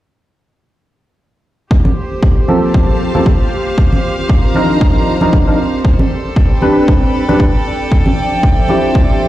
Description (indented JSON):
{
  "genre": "deep house",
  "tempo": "116 BPM",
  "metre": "4/4",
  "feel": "swing 56% on 16ths",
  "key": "G minor",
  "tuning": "A4 = 441 Hz",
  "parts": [
    { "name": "warbly tape-like pad", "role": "sustained chords", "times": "1.7-9.3 s", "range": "Eb3 to B5", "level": "-21 LUFS", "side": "right 2 dB", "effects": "chorus, built-in reverb, sidechain pumping" },
    { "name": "electronic kick drum", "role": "drums", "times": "1.7-9.1 s", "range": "none", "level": "-12 LUFS", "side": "equal", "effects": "none" },
    { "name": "clear studio string section", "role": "texture", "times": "1.7-9.3 s", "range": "G4 to C6", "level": "-20 LUFS", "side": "equal", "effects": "sidechain pumping" },
    { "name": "congas", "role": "percussion", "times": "1.9-8.8 s", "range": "none", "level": "-19 LUFS", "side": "equal", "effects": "none" },
    { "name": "percussive organ stab", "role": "stabs", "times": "2.5-9.3 s", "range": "F3 to B4", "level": "-15 LUFS", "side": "equal", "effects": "ensemble chorus, cassette tape, sidechain pumping, digital delay" }
  ],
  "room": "light reverb, studio reverb",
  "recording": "played on a big sound system in a bare room, large studio reverb",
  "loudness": "-10 LUFS",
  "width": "side -14 dB against mid",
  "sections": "1.7-9.3 A section",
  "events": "none",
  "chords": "1.7 Gm11; 3.8 Cm11; 5.8 Am11; 7.9 Dm11"
}